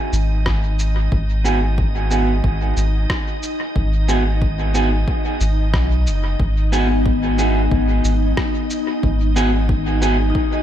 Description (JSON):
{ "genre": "ambient dub", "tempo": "91 BPM", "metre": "4/4", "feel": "swing 53% on 16ths", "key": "G# minor", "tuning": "A4 = 440 Hz", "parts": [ { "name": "soft additive organ-like pad", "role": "sustained chords", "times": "0.0-10.6 s", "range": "D#4", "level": "-26 LUFS", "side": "equal", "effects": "ensemble chorus, built-in reverb, vintage 12-bit sampler grit" }, { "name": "soft dub sub bass", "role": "bass", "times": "0.1-10.3 s", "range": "F#1 to B1", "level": "-18 LUFS", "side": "equal", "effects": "none" }, { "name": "electronic cabasa and rim click", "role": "drums", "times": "0.1-10.2 s", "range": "none", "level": "-28 LUFS", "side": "equal", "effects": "dub echo" }, { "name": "electronic kick drum", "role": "drums", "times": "0.5-10.5 s", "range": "none", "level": "-23 LUFS", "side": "equal", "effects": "none" }, { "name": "electric guitar at the edge of break-up", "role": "stabs", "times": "1.4-10.2 s", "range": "B3 to G#4", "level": "-24 LUFS", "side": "right 3 dB", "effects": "spring reverb, low-pass filter, dub echo" }, { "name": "vibraphone with medium hard mallets", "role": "arpeggios", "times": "6.9-10.6 s", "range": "B3 to D#5", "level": "-24 LUFS", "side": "left 5 dB", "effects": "tape echo" } ], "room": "digital ambience", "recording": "none", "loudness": "-16 LUFS", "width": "side -11 dB against mid", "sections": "0.0-10.6 A section", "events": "none", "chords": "0.0 G#m7" }